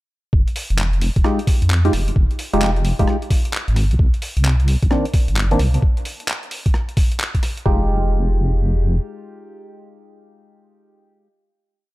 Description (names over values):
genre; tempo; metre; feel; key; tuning
UK garage, two-step garage; 131 BPM; 4/4; swing 64% on 16ths; F minor; A4 = 439 Hz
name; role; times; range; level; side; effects
deep soft wobble bass; bass; 0.3-9.0 s; F1 to F2; -17 LUFS; equal; chorus
electronic kick drum; drums; 0.3-7.8 s; none; -17 LUFS; equal; none
boom bap sampler-style drum kit; drums; 0.5-7.6 s; handclaps, hi-hat, rim click; -26 LUFS; equal; none
percussive organ stab; stabs; 1.2-11.3 s; Eb3 to G4; -23 LUFS; equal; chorus, phaser, cassette tape, tape echo
room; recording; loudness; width
digital ambience; dark, warm production; -16 LUFS; side -18 dB against mid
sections
0.3-7.7 groove; 7.7-11.3 final chord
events
none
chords
0.3 Fm9; 4.0 Cm9; 7.7 Fm9